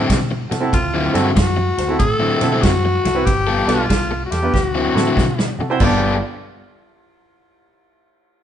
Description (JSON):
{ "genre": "electric blues shuffle", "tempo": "95 BPM", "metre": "4/4", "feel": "swing 66% on 8ths", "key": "unclear", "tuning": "A4 = 437 Hz", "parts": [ { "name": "crunchy overdriven guitar", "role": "riff", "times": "0.0-6.2 s", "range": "D3 to A4", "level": "-21 LUFS", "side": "left 2 dB", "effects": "none" }, { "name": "vintage muted fingered electric bass", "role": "bass", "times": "0.0-6.2 s", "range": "G1 to C3", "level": "-23 LUFS", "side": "equal", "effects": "none" }, { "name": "natural country drum kit", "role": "drums", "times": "0.1-6.0 s", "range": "crash cymbal, kick drum, ride cymbal, snare drum", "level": "-21 LUFS", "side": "right 1 dB", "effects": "none" }, { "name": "bright upright piano", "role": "accompaniment", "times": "0.5-6.2 s", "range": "B3 to C5", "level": "-23 LUFS", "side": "right 3 dB", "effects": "none" }, { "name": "growling tenor saxophone", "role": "melody", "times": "0.7-6.2 s", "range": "F4 to A4", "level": "-21 LUFS", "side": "left 2 dB", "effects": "none" }, { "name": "electric guitar through a small old amp", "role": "second line", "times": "5.8-6.2 s", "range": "D5", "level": "-26 LUFS", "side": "right 2 dB", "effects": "none" } ], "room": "moderate stone room reverb, RT60 1.3 s", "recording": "band playing live in one room, nothing above 10.4 kHz", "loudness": "-15 LUFS", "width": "side -9 dB against mid", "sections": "0.0-5.8 A section; 5.8-8.3 B section", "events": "drum fill 4.5-5.8", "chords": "0.0 D9; 3.3 G9; 4.5 D9; 5.8 G9", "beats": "0.10 | 0.73 1.37 2.00 2.63 | 3.27 3.90 4.54 5.17 | 5.80" }